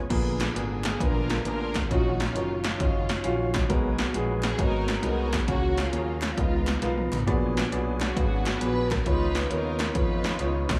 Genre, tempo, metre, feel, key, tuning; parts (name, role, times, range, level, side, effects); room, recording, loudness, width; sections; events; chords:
uptempo gospel; 134 BPM; 4/4; swing 66% on 8ths; A4 = 439 Hz
overdriven tonewheel organ; sustained chords; 0.0-10.8 s; D3 to A#4; -37 LUFS; equal; slow rotary speaker, chorus vibrato
fingered electric bass; bass; 0.0-10.8 s; F#1 to E#2; -33 LUFS; equal
clear upright piano; accompaniment; 0.1-10.7 s; A#2 to E#5; -33 LUFS; equal
punchy analog drum machine; drums; 0.1-10.8 s; crash cymbal, hi-hat, kick drum, snare drum, toms; -31 LUFS; equal
group handclap; percussion; 0.4-10.8 s; -43 LUFS; equal
dark studio string section; melody; 0.9-10.8 s; G#3 to B4; -34 LUFS; equal
light reverb; -26 LUFS; mono
0.1-10.8 A section
drum fill 6.8-7.3
0.1 A#7b9; 1.9 D#m9; 3.7 G#m9; 5.5 F#/C#; 6.4 C#13; 7.3 A#7b9b13; 9.1 C#9